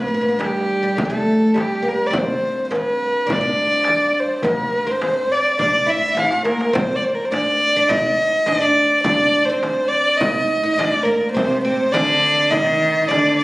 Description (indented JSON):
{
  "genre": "Arabic maqam ensemble",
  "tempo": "104 BPM",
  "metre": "4/4",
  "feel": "straight",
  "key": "G maqam rast",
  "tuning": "A4 = 441 Hz",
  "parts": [
    { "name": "dark violin", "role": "melody", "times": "0.0-13.4 s", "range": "G4 to F5+45c", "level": "-17 LUFS", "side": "equal", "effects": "none" },
    { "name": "oud", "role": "second line", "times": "0.0-13.4 s", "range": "G3 to F#4-50c", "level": "-22 LUFS", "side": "right 1 dB", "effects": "none" },
    { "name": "warm double bass", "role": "drone", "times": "0.0-6.8 s", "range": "G2", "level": "-37 LUFS", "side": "equal", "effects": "none" },
    { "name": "darbuka", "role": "percussion", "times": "0.3-13.3 s", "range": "none", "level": "-33 LUFS", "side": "equal", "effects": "none" },
    { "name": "frame drum", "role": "percussion", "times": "0.4-13.2 s", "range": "none", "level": "-27 LUFS", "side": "equal", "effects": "none" },
    { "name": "rich cello", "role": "second line", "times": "11.4-13.4 s", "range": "C3 to Eb3+26c", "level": "-22 LUFS", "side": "equal", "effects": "none" }
  ],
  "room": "wet recital hall reverb, RT60 1.6 s",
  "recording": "recorded on a phone in the room, club reverb",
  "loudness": "-15 LUFS",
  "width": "side -20 dB against mid",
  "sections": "0.0-6.7 A section; 6.7-13.4 B section",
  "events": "drum fill 6.2-6.7",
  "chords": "none"
}